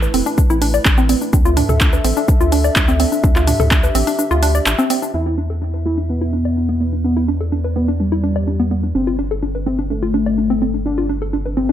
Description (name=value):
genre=melodic techno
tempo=126 BPM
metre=4/4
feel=straight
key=unclear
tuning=A4 = 439 Hz
part: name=dark analog pad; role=sustained chords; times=0.0-11.7 s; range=G3 to E5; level=-27 LUFS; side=left 1 dB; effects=chorus, sidechain pumping
part: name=warbly dusty pluck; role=arpeggios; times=0.0-11.7 s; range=B3 to D5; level=-20 LUFS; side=equal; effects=chorus, sidechain pumping, tape echo
part: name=round analog bass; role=bass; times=0.0-11.7 s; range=E1 to E2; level=-20 LUFS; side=equal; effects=sidechain pumping
part: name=house drum kit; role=drums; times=0.0-5.1 s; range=handclaps, hi-hat, shaker, toms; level=-21 LUFS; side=equal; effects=sidechain pumping on toms, sidechain pumping on hats, sidechain pumping on perc
part: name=electronic kick drum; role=drums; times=0.4-3.8 s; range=none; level=-15 LUFS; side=equal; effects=none
part: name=fat analog lead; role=melody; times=5.1-11.7 s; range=G3 to E4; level=-20 LUFS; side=left 1 dB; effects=sidechain pumping, digital delay
room=light reverb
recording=none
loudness=-14 LUFS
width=side -10 dB against mid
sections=0.0-5.1 A section; 5.1-11.7 B section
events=filter sweep on synth arpeggio sound 0.0-5.1; kick drops out 4.2-5.1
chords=0.0 Am; 1.3 D5; 5.1 Em; 8.9 Gsus4